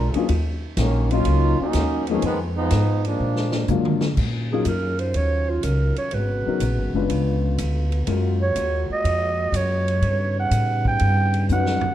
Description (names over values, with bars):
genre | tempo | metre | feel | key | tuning
jazz, big band swing | 123 BPM | 4/4 | swing 69% on 8ths | Eb minor | A4 = 439 Hz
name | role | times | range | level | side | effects
bright trombone section | second line | 0.0-3.7 s | Eb3 to Ab4 | -24 LUFS | right 2 dB | none
upright bass | bass | 0.0-11.9 s | Gb1 to D3 | -22 LUFS | equal | none
swinging big-band drum kit | drums | 0.1-11.9 s | crash cymbal, hi-hat, kick drum, ride cymbal, snare drum, toms | -31 LUFS | right 1 dB | none
warm baby grand piano | accompaniment | 0.2-8.4, 11.5-11.8 s | F3 to Cb5 | -25 LUFS | left 7 dB | none
mellow trombone section | sustained chords | 4.2-11.9 s | Db3 to Gb4 | -31 LUFS | left 1 dB | none
growling clarinet | melody | 4.5-11.9 s | F4 to G5 | -24 LUFS | right 3 dB | none
room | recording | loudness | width
moderate recital hall reverb, RT60 1.5 s | dark, warm production | -19 LUFS | side -12 dB against mid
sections
0.0-4.2 A section; 4.2-11.9 B section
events
trombone section solo 0.0-4.2; drum fill 3.2-4.2, 11.5-11.9; clarinet solo 4.2-11.9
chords
0.3 Ebm7; 2.2 Fm7b5; 3.2 Bb7b13; 4.2 Ebm9; 6.1 Abm11; 7.1 Db7b9; 8.1 Gbmaj9; 10.0 Eb7alt